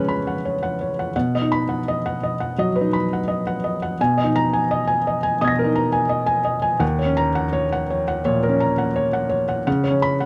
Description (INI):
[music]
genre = neoclassical minimalist piano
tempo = 84 BPM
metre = 4/4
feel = rubato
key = Eb minor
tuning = A4 = 440 Hz
[part]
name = felt-muted upright piano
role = solo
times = 0.0-10.3 s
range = Eb2 to Cb7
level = -21 LUFS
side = equal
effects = none
[sound]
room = moderate studio ambience, RT60 0.5 s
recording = dark, warm production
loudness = -21 LUFS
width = mono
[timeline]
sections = 0.0-10.3 A section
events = none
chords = 0.0 Db7sus4; 1.1 B; 4.0 Abmadd9/Cb; 6.8 Ebm7; 9.7 Db7sus4